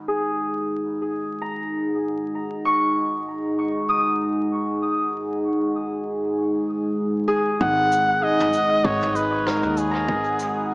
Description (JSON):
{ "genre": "ambient dub", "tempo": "97 BPM", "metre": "4/4", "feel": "swing 55% on 16ths", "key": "unclear", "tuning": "A4 = 440 Hz", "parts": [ { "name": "deep dark ambient pad", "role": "sustained chords", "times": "0.0-10.7 s", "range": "G#3 to F#5", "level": "-24 LUFS", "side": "equal", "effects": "chorus, built-in reverb" }, { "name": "Celtic harp", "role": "arpeggios", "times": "0.1-10.7 s", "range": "G#4 to D#6", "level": "-26 LUFS", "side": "equal", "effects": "low-pass filter, dub echo" }, { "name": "trumpet with cup mute", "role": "melody", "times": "7.6-10.7 s", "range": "G#4 to F#5", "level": "-20 LUFS", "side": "equal", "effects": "dub echo" }, { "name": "upright bass", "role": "bass", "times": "7.6-10.7 s", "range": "G#1 to D#2", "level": "-29 LUFS", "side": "equal", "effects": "none" }, { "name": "electronic kick drum", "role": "drums", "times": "7.6-10.2 s", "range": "none", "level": "-26 LUFS", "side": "equal", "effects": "none" }, { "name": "soft brush drum kit", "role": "drums", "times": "7.9-10.5 s", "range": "cabasa, rim click, toms", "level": "-33 LUFS", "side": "equal", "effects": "low-pass filter on toms, low-pass filter on snare, low-pass filter on perc, low-pass filter on room, dub echo" } ], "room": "wet echo chamber reverb, RT60 1.4 s, small room ambience", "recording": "echo-heavy mix, vinyl crackle, small speaker sound", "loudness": "-20 LUFS", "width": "side -26 dB against mid", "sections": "0.0-7.6 A section; 7.6-10.7 B section", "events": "filter sweep on harp 0.0-7.6", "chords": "0.0 Badd9/G# (rootless); 7.6 G#7(no3)" }